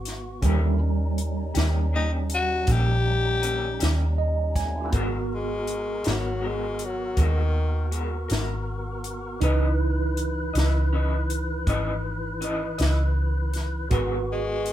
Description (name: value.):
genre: slow blues.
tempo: 53 BPM (dotted quarters).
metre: 12/8.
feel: straight.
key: G# minor.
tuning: A4 = 439 Hz.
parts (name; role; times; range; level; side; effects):
barky tine electric piano; accompaniment; 0.0-14.7 s; G3 to A#5; -33 LUFS; right 6 dB; medium stereo tremolo.
tonewheel organ; sustained chords; 0.0-14.7 s; D3 to D5; -34 LUFS; left 1 dB; overdrive, fast rotary speaker.
vintage muted fingered electric bass; bass; 0.0-14.7 s; G#1 to D#2; -25 LUFS; equal; none.
compact cocktail drum kit; drums; 0.1-14.7 s; hi-hat, kick drum, snare drum; -28 LUFS; equal; none.
electric guitar through a small old amp; accompaniment; 0.4-14.2 s; D#3 to D#5; -32 LUFS; left 2 dB; tremolo.
growling tenor saxophone; melody; 2.0-14.7 s; D#3 to G4; -27 LUFS; left 3 dB; none.
room: light reverb.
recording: band playing live in one room.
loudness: -22 LUFS.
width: side -12 dB against mid.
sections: 0.0-4.9 A section; 4.9-14.7 B section.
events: tine electric piano fill 3.8-4.9; tenor saxophone solo 4.9-14.7.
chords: 0.4 D#7; 4.9 G#m9; 9.4 C#m9; 13.9 G#m9.